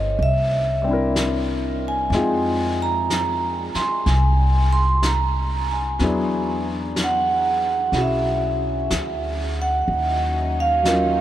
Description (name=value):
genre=jazz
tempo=62 BPM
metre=4/4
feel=swing 68% on 8ths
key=unclear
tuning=A4 = 441 Hz
part: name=vibraphone with medium hard mallets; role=melody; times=0.0-11.2 s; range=Eb5 to C6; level=-22 LUFS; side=right 2 dB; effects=none
part: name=warm grand piano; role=accompaniment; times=0.0-11.2 s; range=F#3 to Bb4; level=-26 LUFS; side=left 2 dB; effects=none
part: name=upright bass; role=bass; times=0.0-11.2 s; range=G1 to F2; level=-23 LUFS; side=equal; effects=none
part: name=vintage brush drum kit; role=drums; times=0.2-11.2 s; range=brushed snare drum, hi-hat, snare drum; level=-30 LUFS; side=equal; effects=none
part: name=warm chamber string section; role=sustained chords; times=9.9-11.2 s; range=Eb3 to Eb4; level=-30 LUFS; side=right 2 dB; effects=none
room=moderate huge ambient reverb, RT60 8.9 s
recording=in a vast, echoing space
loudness=-18 LUFS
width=side -12 dB against mid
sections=0.0-11.2 A section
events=none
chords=0.2 C7; 2.1 Fm7; 6.0 E9; 9.9 Ebm9